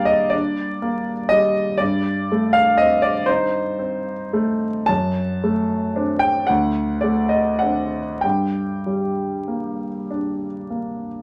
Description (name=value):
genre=classical, romantic nocturne for solo piano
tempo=32-41 BPM (dotted quarters)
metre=6/8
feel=rubato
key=G minor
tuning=A4 = 440 Hz
part: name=clear grand piano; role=solo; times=0.0-11.2 s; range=D2 to A5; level=-21 LUFS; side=equal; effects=none
room=wet small room reverb, RT60 0.5 s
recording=vinyl crackle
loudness=-21 LUFS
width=mono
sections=0.0-11.2 A section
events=none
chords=0.0 Gm; 1.8 Am7b5/G; 4.9 D7/F#; 6.5 D5; 8.2 Gm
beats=0.33 | 1.80 3.28 | 4.88 6.49 | 8.23 10.10